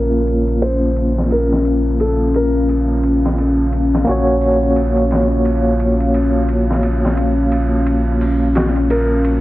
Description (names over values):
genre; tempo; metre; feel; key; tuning
trip hop; 87 BPM; 4/4; swing 59% on 16ths; unclear; A4 = 440 Hz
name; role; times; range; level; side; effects
felt-muted upright piano; melody; 0.0-3.0, 8.6-9.4 s; Gb4 to C5; -21 LUFS; equal; vintage 12-bit sampler grit, tape echo
barky tine electric piano; accompaniment; 0.0-9.4 s; Bb3 to Db5; -19 LUFS; equal; tremolo, vintage 12-bit sampler grit, tape echo
dark analog pad; sustained chords; 0.0-9.4 s; Db4 to F5; -19 LUFS; left 1 dB; chorus
warm sub bass; bass; 0.0-9.4 s; Bb1; -18 LUFS; equal; tube saturation
trip hop sampler-style drum kit; drums; 0.3-9.4 s; hi-hat, ride cymbal, snare drum; -26 LUFS; equal; high-pass filter on snare, studio reverb, high-pass filter on kick, high-pass filter on cymbals, high-pass filter on hats
room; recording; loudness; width
light reverb; heavily compressed radio sound, multiband compression, vinyl crackle, low-pass filter; -13 LUFS; side -16 dB against mid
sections
0.0-9.4 A section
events
filter sweep on analog synth pad 0.0-9.4; filter sweep 0.0-9.4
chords
0.0 Bbm; 4.1 Gb/Bb